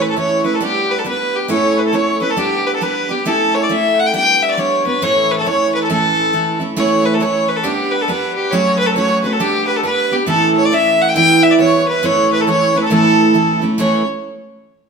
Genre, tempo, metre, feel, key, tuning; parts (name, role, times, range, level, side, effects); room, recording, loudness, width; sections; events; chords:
celtic folk, Celtic polka; 136 BPM; 2/4; swing 63% on 8ths; A mixolydian; A4 = 439 Hz
rich fiddle; melody; 0.0-14.1 s; G4 to G5; -15 LUFS; equal
hammered dulcimer; second line; 0.0-1.4 s; barely audible
melodica; second line; 0.0-14.1 s; G4 to G5; -22 LUFS; left 3 dB
picked steel-string acoustic guitar; accompaniment; 0.0-14.0 s; A2 to A4; -17 LUFS; right 2 dB
wet stone room reverb, RT60 1.2 s; band playing live in one room; -12 LUFS; side -5 dB against mid
0.0-6.8 A section; 6.8-13.8 A section
0.0 A; 0.6 G; 1.5 A; 2.4 G; 3.3 A; 4.1 G; 5.0 A; 7.7 G; 8.5 F#m; 9.4 G; 10.3 A; 11.2 Em; 12.0 A